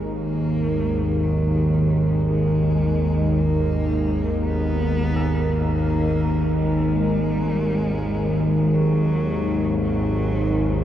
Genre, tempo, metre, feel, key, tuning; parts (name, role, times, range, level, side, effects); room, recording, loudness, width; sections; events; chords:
dark ambient drone; 56 BPM; 4/4; straight; A4 = 439 Hz
rich cello; melody; 0.0-10.8 s; F#3 to B3; -32 LUFS; left 1 dB; diffuse ambient delay
deep dark ambient pad; sustained chords; 0.0-10.8 s; G#3 to A#4; -25 LUFS; equal; chorus, built-in reverb
bowed-like drone; drone; 0.0-10.8 s; G#1 to D#2; -20 LUFS; equal; built-in reverb
gamelan-type bronze metallophone; arpeggios; 5.2-10.8 s; D#3; -38 LUFS; left 1 dB
moderate huge ambient reverb, RT60 9.3 s; dark, warm production; -19 LUFS; side -11 dB against mid
0.0-10.8 A section
fade-in on cello 0.0-10.8; filter sweep on synth drone 0.0-10.8
0.0 G#sus2